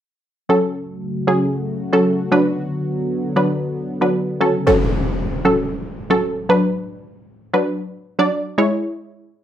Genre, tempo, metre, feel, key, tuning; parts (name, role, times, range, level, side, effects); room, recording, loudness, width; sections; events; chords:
pop; 115 BPM; 4/4; straight; F# minor; A4 = 440 Hz
wide unison pluck; accompaniment; 0.5-9.4 s; F#3 to D5; -16 LUFS; equal
sweeping resonant pad; sustained chords; 0.5-4.7 s; C#3 to F#4; -24 LUFS; equal; chorus
impact; sound effects; 4.7-6.8 s; -23 LUFS; left 1 dB
wet studio reverb, RT60 0.6 s; rough home demo mix; -17 LUFS; side -10 dB against mid
0.5-4.7 A section; 4.7-9.4 B section
impact 4.7-6.8
0.5 F#m; 2.3 Bm; 4.4 F#m; 6.5 Bm; 8.6 C#m